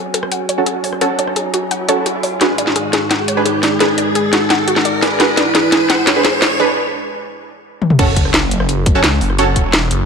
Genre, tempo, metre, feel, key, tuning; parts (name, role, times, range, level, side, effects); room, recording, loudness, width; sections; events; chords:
dark technical drum and bass; 172 BPM; 4/4; straight; A4 = 440 Hz
dark analog pad; sustained chords; 0.0-6.6 s; G#3 to G#5; -20 LUFS; equal; chorus, sidechain pumping
riser and sub drop; sound effects; 0.0-9.4 s; -22 LUFS; left 1 dB
analog pluck; arpeggios; 0.1-6.5 s; F#4 to F#5; -20 LUFS; left 3 dB; chorus, cassette tape, sidechain pumping, dub echo
drum and bass drum kit; drums; 0.1-10.0 s; crash cymbal, hi-hat, rim click, snare drum, toms; -16 LUFS; equal
orchestra-hit-like synth stab; stabs; 0.6-9.4 s; C#4 to B4; -19 LUFS; right 3 dB; built-in reverb, dub echo
phased detuned saw bass; bass; 8.0-10.1 s; E1 to C#2; -16 LUFS; equal; phaser, overdrive, sidechain pumping
electronic kick drum; drums; 8.0-9.6 s; -14 LUFS; equal
moderate lush hall reverb, RT60 1.9 s, digital ambience; -12 LUFS; side -5 dB against mid
0.0-8.0 A section; 8.0-10.1 B section
build-up 0.0-8.0; riser 0.0-6.6; filter sweep on analog synth pad 0.0-8.0; filter sweep on synth arpeggio sound 0.0-8.0; filter sweep on synth stab 0.0-8.0; drum fill 2.4-6.6, 7.8; break 6.6-8.0; drop 8.0-10.1; impact 8.0-9.4
0.0 F#m; 2.4 G#(b5, no3); 8.0 F#5